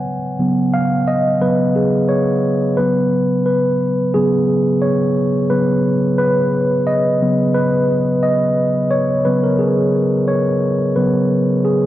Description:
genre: R&B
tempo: 88 BPM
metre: 4/4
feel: swing 55% on 16ths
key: unclear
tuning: A4 = 441 Hz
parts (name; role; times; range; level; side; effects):
- mellow tine electric piano; solo; 0.0-11.9 s; Db3 to Ab5; -14 LUFS; equal; none
room: moderate echo chamber reverb, RT60 2.1 s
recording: none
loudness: -14 LUFS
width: side -14 dB against mid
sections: 0.0-2.8 A section; 2.8-11.9 B section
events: tine electric piano solo 0.0-2.8, 2.8-11.9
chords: 0.0 Db7sus4

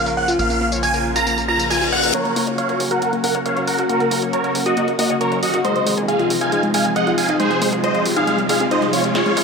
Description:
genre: uplifting trance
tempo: 137 BPM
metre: 4/4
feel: straight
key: unclear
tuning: A4 = 437 Hz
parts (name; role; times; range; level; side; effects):
- big supersaw lead; melody; 0.0-9.4 s; F4 to Bb5; -19 LUFS; right 1 dB; phaser, low-pass filter, dub echo
- clear concert grand piano; second line; 0.0-2.1 s; F6 to Bb6; -28 LUFS; right 3 dB; vintage 12-bit sampler grit, dub echo
- lush unison pad; sustained chords; 0.0-9.3 s; C3 to Gb4; -24 LUFS; equal; chorus
- analog pluck; arpeggios; 0.0-9.4 s; Ab3 to Bb5; -23 LUFS; left 4 dB; chorus, dub echo
- tight sequencer bass; bass; 0.0-9.4 s; F1 to F2; -31 LUFS; equal; none
- punchy analog drum machine; drums; 0.1-9.4 s; hi-hat, snare drum, tambourine; -26 LUFS; right 1 dB; high-pass filter on perc, high-pass filter on hats, high-pass filter on snare
- reverse cymbal and riser; sound effects; 1.5-9.4 s; none; -27 LUFS; left 1 dB; none
room: moderate huge ambient reverb, RT60 6.5 s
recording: low-pass filter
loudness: -16 LUFS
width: side -4 dB against mid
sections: 0.0-2.1 A section; 2.1-9.4 B section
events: filter sweep 0.0-2.1; reverse cymbal 1.5-2.1; build-up 2.1-9.4; riser 2.1-9.4; filter sweep on supersaw synth 2.1-9.4; drum fill 9.2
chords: 0.0 Bbm; 2.1 Gb; 5.6 Fm7

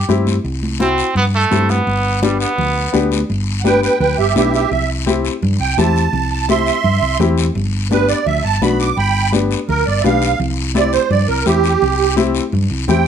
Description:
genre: latin, cumbia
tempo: 169 BPM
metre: 4/4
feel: straight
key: G major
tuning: A4 = 440 Hz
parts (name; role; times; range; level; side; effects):
- bright trumpet; second line; 0.0-3.1 s; G3 to G4; -18 LUFS; right 3 dB; none
- hollow-body short-scale fingered electric bass; bass; 0.0-13.1 s; G1 to G2; -18 LUFS; equal; none
- warm upright piano; accompaniment; 0.1-13.1 s; B3 to G4; -19 LUFS; left 6 dB; none
- congas; percussion; 0.1-13.1 s; none; -23 LUFS; right 1 dB; none
- guiro; percussion; 0.1-13.1 s; none; -28 LUFS; left 8 dB; none
- musette accordion; melody; 3.6-13.1 s; G4 to D6; -16 LUFS; right 7 dB; slapback echo
room: moderate studio reverb, RT60 0.6 s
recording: none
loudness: -13 LUFS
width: side -8 dB against mid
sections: 0.0-3.3 A section; 3.3-13.1 B section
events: trumpet solo 0.0-3.3; accordion solo 3.3-13.1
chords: 0.0 C; 1.9 G; 4.7 C; 7.6 G; 10.4 C

